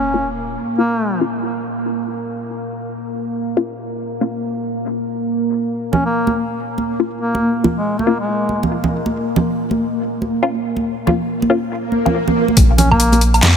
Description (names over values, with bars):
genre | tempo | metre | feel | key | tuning
deep dubstep | 140 BPM | 4/4 | swing 61% on 16ths, half-time | Bb minor | A4 = 440 Hz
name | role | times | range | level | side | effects
warm duduk | melody | 0.0-1.2, 5.9-8.6, 12.8-13.2 s | Ab3 to Db4 | -21 LUFS | equal | dub echo
deep dark ambient pad | sustained chords | 0.0-13.6 s | Bb3 | -22 LUFS | right 1 dB | chorus, built-in reverb
sub drop and swell | sound effects | 0.0-0.6, 11.9-12.6 s | none | -23 LUFS | right 1 dB | none
filtered dub chord stab | stabs | 0.1-4.3, 7.0-12.1 s | Bb3 to F4 | -22 LUFS | left 4 dB | phaser, dub echo
congas | percussion | 5.9-13.2 s | none | -20 LUFS | right 2 dB | dub echo
soft dub sub bass | bass | 12.6-13.6 s | Bb1 to F2 | -14 LUFS | equal | none
dubstep drum kit | drums | 12.6-13.5 s | handclaps, hi-hat, snare drum, woodblock | -15 LUFS | equal | overdrive, studio reverb
electronic kick drum | drums | 12.6-13.0 s | none | -13 LUFS | equal | overdrive, studio reverb
room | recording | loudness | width
light reverb, digital ambience | none | -16 LUFS | side -7 dB against mid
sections
0.0-12.6 A section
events
impact 0.0-0.6; filter sweep on synth stab 0.0-12.6; swell 11.9-12.6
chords
0.0 Bbm; 12.6 Bb5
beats
0.14 | 0.57 1.00 1.43 1.86 | 2.28 2.71 3.14 3.57 | 4.00 4.43 4.86 5.28 | 5.71 6.14 6.57 7.00 | 7.43 7.86 8.28 8.71 | 9.14 9.57 10.00 10.43 | 10.86 11.28 11.71 12.14 | 12.57 13.00 13.43